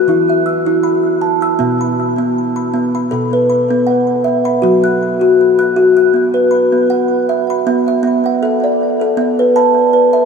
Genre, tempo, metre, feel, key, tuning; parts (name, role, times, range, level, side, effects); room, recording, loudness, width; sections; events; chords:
world meditative, meditative tuned percussion; 79 BPM; 4/4; swing 55% on 16ths; B minor pentatonic; A4 = 440 Hz
kalimba; solo; 0.0-10.3 s; B2 to F#6; -11 LUFS; equal; ping-pong delay
wet huge ambient reverb, RT60 8.8 s; dreamy mix soaked in reverb; -11 LUFS; side -5 dB against mid
0.0-7.7 A section; 7.7-10.3 B section
0.1 E5; 1.6 B5; 4.6 F#sus4; 6.1 B5; 7.7 Bm